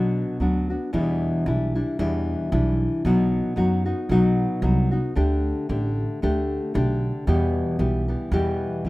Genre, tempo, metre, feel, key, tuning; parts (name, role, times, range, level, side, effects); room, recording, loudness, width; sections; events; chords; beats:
mexican folk, mariachi; 114 BPM; 2/4; swing 54% on 8ths; E minor; A4 = 440 Hz
nylon-string guitar; accompaniment; 0.0-8.9 s; E2 to G4; -22 LUFS; left 1 dB
upright bass; bass; 0.0-8.9 s; A1 to F#2; -24 LUFS; right 1 dB
little or no reverb; rough home demo mix; -20 LUFS; side -19 dB against mid
0.9-8.9 A section
0.0 Bm; 0.9 Em7; 3.1 B; 5.2 Dsus4; 7.3 Em
0.41 | 0.94 1.47 | 2.00 2.53 | 3.05 3.58 | 4.10 4.63 | 5.17 5.70 | 6.23 6.75 | 7.28 7.80 | 8.33 8.86